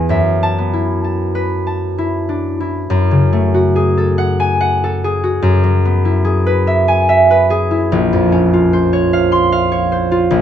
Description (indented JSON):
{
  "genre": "classical, solo harp piece",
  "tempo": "62-77 BPM",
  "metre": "3/4",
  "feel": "rubato",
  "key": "F# minor",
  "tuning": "A4 = 441 Hz",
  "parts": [
    { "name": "concert harp", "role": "solo", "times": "0.0-10.4 s", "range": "A#1 to B#5", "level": "-12 LUFS", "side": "equal", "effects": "none" }
  ],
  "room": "light reverb",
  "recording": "dark, warm production, nothing above 8.0 kHz, faint mains hum",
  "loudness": "-12 LUFS",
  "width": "side -10 dB against mid",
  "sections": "0.0-2.9 A section; 2.9-10.4 B section",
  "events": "none",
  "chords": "0.1 F#m11; 2.9 F#madd9; 5.4 Eadd9/F#; 7.9 A#madd9"
}